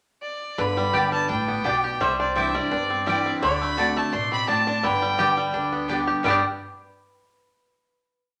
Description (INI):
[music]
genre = bluegrass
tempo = 170 BPM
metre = 4/4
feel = swing 53% on 8ths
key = G major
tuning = A4 = 440 Hz
[part]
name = clear fiddle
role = melody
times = 0.2-5.9 s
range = D5 to C6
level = -30 LUFS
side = equal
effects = none
[part]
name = lap resonator guitar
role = second line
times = 0.6-6.4 s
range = B4 to D5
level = -30 LUFS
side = equal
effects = none
[part]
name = picked steel-string acoustic guitar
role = accompaniment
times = 0.6-6.4 s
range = G2 to G4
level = -32 LUFS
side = equal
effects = none
[part]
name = bluegrass banjo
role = arpeggios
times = 0.6-6.4 s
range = D3 to G4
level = -28 LUFS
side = equal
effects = none
[part]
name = upright bass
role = bass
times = 0.6-6.4 s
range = G1 to D2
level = -39 LUFS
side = equal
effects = none
[part]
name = mandolin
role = stabs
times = 0.9-6.4 s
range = B3 to A5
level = -28 LUFS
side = equal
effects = none
[sound]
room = wet large studio reverb, RT60 0.9 s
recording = none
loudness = -23 LUFS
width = mono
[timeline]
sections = 0.0-0.6 pickup bar; 0.6-6.2 A section; 6.2-7.6 final chord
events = none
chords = 0.0 N.C.; 0.6 G; 2.0 Cadd9; 3.4 D7; 4.8 G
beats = 0.23 | 0.59 0.94 1.30 1.65 | 2.01 2.36 2.72 3.07 | 3.42 3.78 4.13 4.48 | 4.84 5.19 5.54 5.89 | 6.24